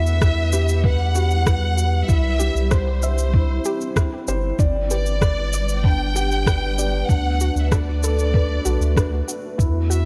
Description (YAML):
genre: piano and strings electronica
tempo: 96 BPM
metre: 4/4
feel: straight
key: unclear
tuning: A4 = 440 Hz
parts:
  - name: warm symphonic violin section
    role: melody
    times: 0.0-10.1 s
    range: C5 to G5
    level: -29 LUFS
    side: equal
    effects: none
  - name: granular cloud pad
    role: sustained chords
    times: 0.0-10.1 s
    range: G3 to F#5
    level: -35 LUFS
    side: equal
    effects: built-in reverb
  - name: felt-muted upright piano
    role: riff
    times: 0.0-10.1 s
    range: D4 to E5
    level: -30 LUFS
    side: equal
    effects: digital delay
  - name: round analog bass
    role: bass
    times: 0.0-10.1 s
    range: G1 to E2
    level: -23 LUFS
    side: equal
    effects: sidechain pumping
  - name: electronic shaker and rim click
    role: drums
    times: 0.1-10.0 s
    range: none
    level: -29 LUFS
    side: equal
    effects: none
  - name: soft round pluck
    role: arpeggios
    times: 0.2-10.0 s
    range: D4 to E5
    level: -35 LUFS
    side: equal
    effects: chorus, sidechain pumping, digital delay
  - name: electronic kick drum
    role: drums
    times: 0.2-9.7 s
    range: none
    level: -21 LUFS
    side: equal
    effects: none
room: little or no reverb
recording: none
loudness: -20 LUFS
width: mono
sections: 0.0-10.1 A section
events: none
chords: 0.0 Emadd9; 2.1 C; 4.6 G; 7.1 D6